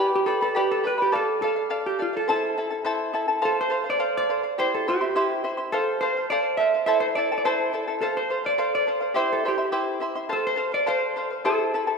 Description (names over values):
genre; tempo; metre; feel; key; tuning
andean folk; 105 BPM; 2/4; straight; unclear; A4 = 436 Hz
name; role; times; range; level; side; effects
vintage hollow-body jazz guitar; melody; 0.0-12.0 s; F4 to E5; -24 LUFS; right 2 dB; none
charango; accompaniment; 0.0-12.0 s; E4 to C6; -25 LUFS; left 2 dB; none
room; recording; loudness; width
wet scoring stage reverb, RT60 2.0 s; minimal, uncompressed stereo recording; -22 LUFS; side -4 dB against mid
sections
0.0-3.4 A section; 3.4-12.0 B section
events
none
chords
0.0 G; 1.1 Dm; 2.3 Am; 3.4 F; 4.6 C; 5.7 F; 6.9 Am; 8.0 F; 9.2 C; 10.3 F; 11.4 Am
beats
0.56 | 1.14 1.72 | 2.29 2.87 | 3.44 4.02 | 4.59 5.17 | 5.74 6.31 | 6.88 7.46 | 8.03 8.60 | 9.17 9.74 | 10.31 10.88 | 11.45